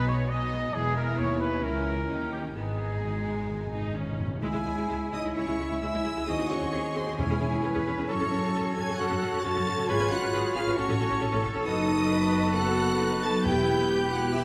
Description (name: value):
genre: classical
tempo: 133 BPM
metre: 4/4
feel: rubato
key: G# minor, C# minor from 4.4 s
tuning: A4 = 441 Hz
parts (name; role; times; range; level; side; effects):
- warm symphonic violin section; melody; 0.0-14.4 s; G5 to A6; -41 LUFS; equal; none
- warm symphonic violin section; second line; 0.0-14.4 s; D#4 to A5; -41 LUFS; equal; none
- bright symphonic viola section; accompaniment; 0.0-14.4 s; G#3 to B4; -37 LUFS; equal; none
- concert harp; arpeggios; 0.0-14.4 s; E2 to B5; -36 LUFS; equal; none
- clear trumpet section; stabs; 0.0-3.9 s; G4 to D#5; -35 LUFS; equal; none
- clear symphonic double bass section; bass; 0.0-14.4 s; E1 to F#2; -36 LUFS; equal; none
- rich symphonic cello section; bass; 0.0-14.4 s; C#2 to B4; -38 LUFS; equal; none
- timpani; percussion; 2.6-4.4, 7.2-7.8, 13.5-14.1 s; E2 to G#2; -38 LUFS; equal; none
- mellow silver concert flute; second line; 4.4-14.4 s; G5 to B5; -39 LUFS; equal; none
- warm clarinet; second line; 4.4-14.4 s; E4 to F#4; -38 LUFS; equal; none
- warm cor anglais; second line; 4.4-14.4 s; B4 to E5; -39 LUFS; equal; none
- mellow French horn section; sustained chords; 4.4-14.4 s; G#3 to A4; -34 LUFS; equal; none
room: wet scoring stage reverb, RT60 1.7 s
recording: none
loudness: -28 LUFS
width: mono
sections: 0.0-4.4 A section; 4.4-14.4 B section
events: timpani fill 2.6-4.4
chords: 0.0 G#m/B; 0.8 E; 1.6 A#m7b5/C#; 2.1 D#7; 2.6 G#m; 4.4 C#m; 6.3 G#7/D#; 7.2 C#m/E; 8.1 F#m; 9.9 C#7/G#; 10.8 F#m/A; 11.7 B7/F#; 13.5 Em